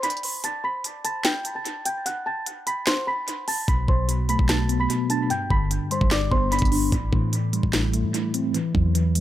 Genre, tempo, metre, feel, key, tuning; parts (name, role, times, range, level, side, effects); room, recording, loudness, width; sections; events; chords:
hip hop, trap; 148 BPM; 4/4; half-time; A4 = 442 Hz
small celesta; melody; 0.0-6.9 s; C5 to B6; -27 LUFS; equal; dub echo
trap drum kit; drums; 0.0-9.2 s; handclaps, hi-hat, kick drum, snare drum; -25 LUFS; equal; dub echo
mellow tine electric piano; accompaniment; 3.7-9.2 s; G2 to D4; -24 LUFS; equal; medium stereo tremolo, low-pass filter, dub echo
clean 808-style bass; bass; 3.7-9.2 s; G1 to A2; -24 LUFS; equal
little or no reverb; echo-heavy mix; -21 LUFS; side -13 dB against mid
0.0-9.2 A section
break 0.0-3.7
0.4 Gadd9; 2.1 Am69; 3.7 Bm7; 5.3 G; 6.9 Am7; 8.5 Esus2